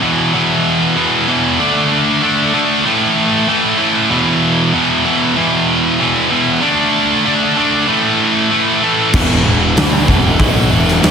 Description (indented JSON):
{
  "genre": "hard rock",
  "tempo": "96 BPM",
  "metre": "4/4",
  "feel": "straight",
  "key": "unclear",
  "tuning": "A4 = 439 Hz",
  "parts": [
    { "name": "scooped high-gain guitar", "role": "riff", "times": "0.0-11.1 s", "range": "E2 to D4", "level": "-12 LUFS", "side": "equal", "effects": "distortion" },
    { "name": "fuzz picked electric bass", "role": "bass", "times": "9.1-11.1 s", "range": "E1 to D2", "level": "-16 LUFS", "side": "equal", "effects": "overdrive" },
    { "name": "huge arena drum kit", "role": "drums", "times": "9.1-11.1 s", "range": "crash cymbal, hi-hat, kick drum, snare drum", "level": "-14 LUFS", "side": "equal", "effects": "none" }
  ],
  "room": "moderate concert hall reverb, RT60 1.9 s, studio reverb",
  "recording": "big arena sound",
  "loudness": "-11 LUFS",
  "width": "side -6 dB against mid",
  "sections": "0.0-11.1 A section",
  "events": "none",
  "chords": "0.0 E5; 1.6 D5; 2.9 A5; 4.1 E5; 6.6 D5; 7.9 A5; 9.1 E5"
}